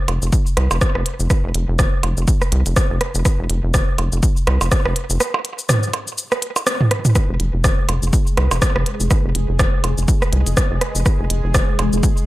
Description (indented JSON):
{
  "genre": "minimal techno",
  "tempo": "123 BPM",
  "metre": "4/4",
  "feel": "swing 57% on 16ths",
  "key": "F minor",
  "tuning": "A4 = 440 Hz",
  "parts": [
    { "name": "rubbery square bass", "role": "bass", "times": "0.1-12.0 s", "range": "F1 to C2", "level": "-19 LUFS", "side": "equal", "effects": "sidechain pumping" },
    { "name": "minimal click drum kit", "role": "drums", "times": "0.1-12.3 s", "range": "cabasa, hi-hat, rim click", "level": "-23 LUFS", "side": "left 1 dB", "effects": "none" },
    { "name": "minimal click drum kit", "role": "percussion", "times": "0.1-11.9 s", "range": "percussion blips, rim click, toms", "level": "-21 LUFS", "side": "right 2 dB", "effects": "tape echo" },
    { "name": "electronic kick drum", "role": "drums", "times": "0.3-12.1 s", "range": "none", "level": "-18 LUFS", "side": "equal", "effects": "overdrive" },
    { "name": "bubbling stepped-filter texture", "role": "texture", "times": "7.8-12.3 s", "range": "Ab3 to Ab4", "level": "-28 LUFS", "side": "left 2 dB", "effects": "chorus, built-in reverb, sidechain pumping" }
  ],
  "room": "light reverb, digital ambience",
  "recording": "echo-heavy mix",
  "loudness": "-16 LUFS",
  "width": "side -17 dB against mid",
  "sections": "0.0-12.3 A section",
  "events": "none",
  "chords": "0.0 Fm"
}